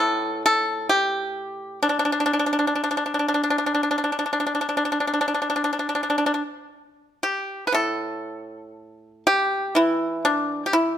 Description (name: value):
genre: chinese traditional, Chinese solo plucked strings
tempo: 57-66 BPM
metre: 4/4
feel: rubato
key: unclear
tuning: A4 = 440 Hz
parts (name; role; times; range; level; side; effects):
- pipa; solo; 0.0-11.0 s; A2 to B4; -21 LUFS; equal; none
room: light reverb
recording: close, detailed microphones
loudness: -21 LUFS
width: side -10 dB against mid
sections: 0.0-7.7 A section; 7.7-11.0 B section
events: none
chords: none